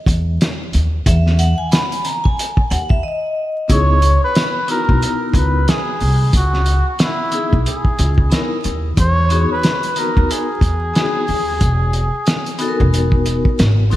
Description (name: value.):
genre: hip hop, jazz-hop.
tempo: 91 BPM.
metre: 4/4.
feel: swing 58% on 16ths.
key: C# dorian.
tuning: A4 = 441 Hz.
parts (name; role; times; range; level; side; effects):
upright bass; bass; 0.1-14.0 s; E1 to E2; -16 LUFS; equal; none.
cloth-damped thuddy drum kit; drums; 0.1-14.0 s; hi-hat, kick drum, snare drum; -17 LUFS; equal; none.
vibraphone with medium hard mallets; accompaniment; 1.1-14.0 s; B3 to B5; -22 LUFS; left 2 dB; none.
trumpet with cup mute; melody; 3.7-13.6 s; E4 to C#5; -20 LUFS; equal; tape echo.
room: moderate lush hall reverb, RT60 1.9 s, studio reverb.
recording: dreamy mix soaked in reverb, vinyl crackle, lossy compression artefacts.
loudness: -14 LUFS.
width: side -14 dB against mid.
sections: 0.0-3.7 A section; 3.7-14.0 B section.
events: vibraphone solo 0.0-3.7; break 3.0-3.7.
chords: 0.0 Emaj7/D#; 3.0 N.C.; 3.7 C#m7; 9.0 Emaj7.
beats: 0.40 | 1.06 1.72 2.38 3.04 | 3.70 4.36 5.02 5.68 | 6.34 7.00 7.66 8.31 | 8.97 9.63 10.29 10.95 | 11.61 12.27 12.93 13.59.